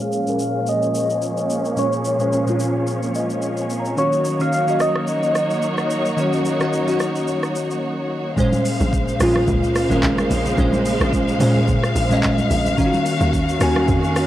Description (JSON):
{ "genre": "amapiano", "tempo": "109 BPM", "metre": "4/4", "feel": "swing 55% on 16ths", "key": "Bb minor", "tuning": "A4 = 440 Hz", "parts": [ { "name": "soft struck synth lead", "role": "melody", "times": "0.0-7.8 s", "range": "Db5 to F5", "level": "-23 LUFS", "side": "equal", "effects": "chorus, phaser, low-pass filter, analog delay, plate reverb" }, { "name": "glassy digital keys", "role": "accompaniment", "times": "0.0-14.3 s", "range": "Bb2 to Bb5", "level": "-20 LUFS", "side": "left 1 dB", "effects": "chorus, low-pass filter, cassette tape" }, { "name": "warm studio string section", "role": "sustained chords", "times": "0.0-14.3 s", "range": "Db3 to F5", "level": "-23 LUFS", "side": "equal", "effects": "sidechain pumping, low-pass filter, cassette tape, plate reverb" }, { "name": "smooth R&B drum kit", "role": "drums", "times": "0.0-14.3 s", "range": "handclaps, hi-hat, kick drum, rim click, shaker", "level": "-26 LUFS", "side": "equal", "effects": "none" }, { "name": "congas", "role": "percussion", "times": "8.5-14.0 s", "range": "none", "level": "-29 LUFS", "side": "right 2 dB", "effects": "none" }, { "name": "tight log drum bass", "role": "bass", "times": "8.8-14.3 s", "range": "Ab1 to Bb2", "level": "-23 LUFS", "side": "equal", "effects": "none" } ], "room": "light reverb", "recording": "home recording on cassette", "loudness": "-17 LUFS", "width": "side -13 dB against mid", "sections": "0.0-8.4 A section; 8.4-14.3 B section", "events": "filter sweep 0.0-8.4; synth keys fill 2.9-4.0; drums muted 7.8-8.4; drop 8.4-14.3", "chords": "0.0 Bbm9; 4.0 Ebm9; 8.4 Bbm9; 12.8 Ebm9", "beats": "0.12 0.67 1.22 | 1.77 2.32 2.87 3.42 | 3.97 4.52 5.08 5.62 | 6.18 6.73 7.28 7.83 | 8.38 8.93 9.48 10.03 | 10.58 11.13 11.68 12.23 | 12.78 13.33 13.88" }